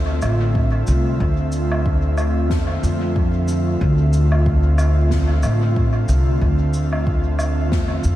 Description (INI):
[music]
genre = ambient dub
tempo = 92 BPM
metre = 4/4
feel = swing 57% on 16ths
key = D minor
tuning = A4 = 440 Hz
[part]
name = airy breathy pad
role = sustained chords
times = 0.0-8.2 s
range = D3 to E5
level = -24 LUFS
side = equal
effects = chorus
[part]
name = upright bass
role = bass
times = 0.0-8.2 s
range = A1 to F2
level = -18 LUFS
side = equal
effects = none
[part]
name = cabasa, woodblock and snare drum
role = drums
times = 0.2-8.2 s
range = none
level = -29 LUFS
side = equal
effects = studio reverb, dub echo
[part]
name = electronic kick drum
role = drums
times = 0.6-7.9 s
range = none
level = -22 LUFS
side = equal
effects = studio reverb
[sound]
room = light reverb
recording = vinyl crackle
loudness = -16 LUFS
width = side -14 dB against mid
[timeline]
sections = 0.0-8.2 A section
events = none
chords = 0.0 Dm7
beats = 0.55 | 1.20 1.85 2.50 3.15 | 3.81 4.46 5.11 5.76 | 6.42 7.07 7.72